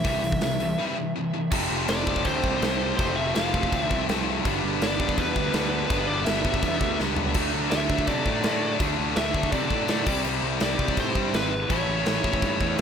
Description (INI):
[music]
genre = punk rock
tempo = 165 BPM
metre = 4/4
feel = straight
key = unclear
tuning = A4 = 440 Hz
[part]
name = smooth overdriven lead guitar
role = melody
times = 0.0-12.7 s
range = B4 to F5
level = -30 LUFS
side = equal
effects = digital delay
[part]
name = tight distorted guitar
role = riff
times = 0.0-12.8 s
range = F2 to E4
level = -28 LUFS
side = left 14 dB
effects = distortion
[part]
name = tight distorted guitar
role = riff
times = 0.0-12.8 s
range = F2 to E4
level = -30 LUFS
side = right 14 dB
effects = distortion
[part]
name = big rock drum kit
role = drums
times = 0.0-12.8 s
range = crash cymbal, hi-hat, kick drum, snare drum, toms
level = -28 LUFS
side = equal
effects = none
[part]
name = fuzz picked electric bass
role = bass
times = 0.1-12.8 s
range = F1 to C3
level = -30 LUFS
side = equal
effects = overdrive
[sound]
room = light reverb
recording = none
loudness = -22 LUFS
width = side -7 dB against mid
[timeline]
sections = 0.0-1.5 A section; 1.5-12.8 B section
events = break 0.8-1.5; drum fill 7.0-7.4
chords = 0.0 C; 1.5 F; 4.5 G; 7.4 D; 10.1 C; 11.7 A7